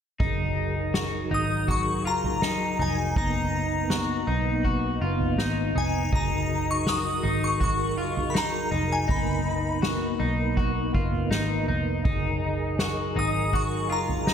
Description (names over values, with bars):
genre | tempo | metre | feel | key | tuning
dream pop | 81 BPM | 4/4 | straight | F# major | A4 = 439 Hz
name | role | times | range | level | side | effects
ensemble organ-string | sustained chords | 0.2-14.3 s | F#3 to A#4 | -30 LUFS | equal | ensemble chorus
electric guitar at the edge of break-up | arpeggios | 0.2-14.3 s | D#4 to F#4 | -30 LUFS | left 2 dB | wide subtle chorus, ping-pong delay
vintage muted picked electric bass | bass | 0.2-14.3 s | E#1 to B1 | -30 LUFS | equal | none
soft-mallet drum kit | drums | 0.2-14.3 s | kick drum, snare drum, toms | -29 LUFS | right 1 dB | none
shimmering bell with halo | melody | 1.3-14.3 s | G#5 to D#6 | -30 LUFS | left 2 dB | ensemble chorus, ping-pong delay
room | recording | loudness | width
light reverb, studio ambience | none | -23 LUFS | side -8 dB against mid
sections
0.2-14.3 A section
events
none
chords
0.2 F#69; 3.2 Bmaj7/F#; 6.1 F#69; 9.1 Bmaj7/F#; 12.1 F#69